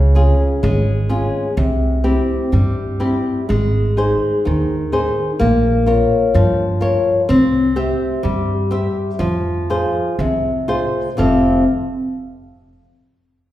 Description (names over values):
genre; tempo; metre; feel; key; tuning
fado-style ballad; 63 BPM; 2/4; rubato; F minor; A4 = 438 Hz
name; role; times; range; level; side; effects
flamenco guitar; accompaniment; 0.0-11.6 s; F2 to F5; -16 LUFS; left 1 dB; none
upright bass; bass; 0.0-11.6 s; F1 to G2; -18 LUFS; right 1 dB; none
room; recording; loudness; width
wet recital hall reverb, RT60 1.6 s; recorded in a church or concert hall; -15 LUFS; side -13 dB against mid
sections
0.0-11.2 A section; 11.2-13.1 B section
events
none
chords
0.0 Db; 1.6 C; 3.5 Ab; 5.4 Bbm; 7.3 C; 9.2 Fm; 11.2 F